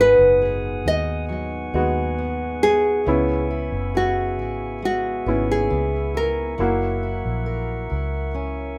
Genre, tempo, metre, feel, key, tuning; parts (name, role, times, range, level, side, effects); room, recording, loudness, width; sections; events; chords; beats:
pop; 68 BPM; 4/4; straight; G# minor; A4 = 440 Hz
nylon-string guitar; melody; 0.0-8.8 s; F#4 to D#5; -22 LUFS; equal
clear upright piano; accompaniment; 0.0-8.8 s; G#2 to F#4; -29 LUFS; equal
tonewheel organ; sustained chords; 0.0-8.8 s; B3 to D#6; -33 LUFS; equal; stopped rotary speaker
fingerpicked steel-string acoustic guitar; arpeggios; 0.0-8.8 s; G#2 to A#4; -37 LUFS; equal
vintage muted fingered electric bass; bass; 0.0-8.8 s; F#1 to D#2; -29 LUFS; equal
light reverb; rough home demo mix; -22 LUFS; mono
0.0-8.8 A section
0.0 G#m7; 3.1 C#m7; 6.6 F#7
0.41 1.30 2.18 | 3.06 3.94 4.83 5.71 | 6.59 7.47 8.36